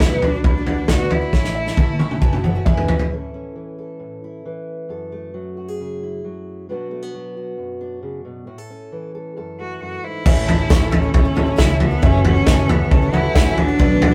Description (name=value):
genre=indie folk with a building arrangement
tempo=135 BPM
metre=4/4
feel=straight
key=A major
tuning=A4 = 439 Hz
part: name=clear cello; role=melody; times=0.0-2.7, 9.6-14.1 s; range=B3 to F#4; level=-26 LUFS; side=equal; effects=none
part: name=picked twelve-string acoustic guitar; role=accompaniment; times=0.0-3.1, 10.3-14.1 s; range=F#2 to A4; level=-29 LUFS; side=equal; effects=none
part: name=warm upright piano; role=arpeggios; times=0.0-3.1, 10.3-14.1 s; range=C#5 to E6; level=-32 LUFS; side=equal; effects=none
part: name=upright bass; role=bass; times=0.0-3.0, 10.3-14.1 s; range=E1 to D2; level=-25 LUFS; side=equal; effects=none
part: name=natural country drum kit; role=drums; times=0.0-3.1, 10.3-14.1 s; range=crash cymbal, kick drum, snare drum, toms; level=-18 LUFS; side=equal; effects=none
part: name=fingerpicked steel-string acoustic guitar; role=accompaniment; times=3.1-12.0 s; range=F#2 to A4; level=-32 LUFS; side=equal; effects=none
part: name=warm grand piano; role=accompaniment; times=10.3-14.1 s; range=F#1 to F#5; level=-33 LUFS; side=equal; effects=none
part: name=hand-pumped harmonium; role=sustained chords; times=10.3-14.1 s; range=C#3 to F#4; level=-34 LUFS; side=equal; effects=none
part: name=tambourine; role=percussion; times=10.7-13.5 s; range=none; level=-42 LUFS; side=equal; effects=none
room=moderate studio reverb, RT60 0.6 s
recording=rough rehearsal-room recording, warm saturation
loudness=-17 LUFS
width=mono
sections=0.0-3.1 A section; 3.1-10.3 B section; 10.3-14.1 A section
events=drum fill 1.3-3.1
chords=0.0 Bm; 1.3 A; 2.2 F#m7; 2.7 E; 3.1 A; 4.9 F#m7; 6.7 Bm; 8.5 A; 9.4 F#m7; 10.3 A; 12.0 F#m7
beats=0.00 0.44 0.89 | 1.33 1.77 2.22 2.66 | 3.11 3.56 4.00 4.45 | 4.90 5.34 5.79 6.24 | 6.69 7.13 7.58 8.03 | 8.48 8.92 9.37 9.81 | 10.26 10.70 11.14 11.59 | 12.03 12.47 12.91 13.35 | 13.79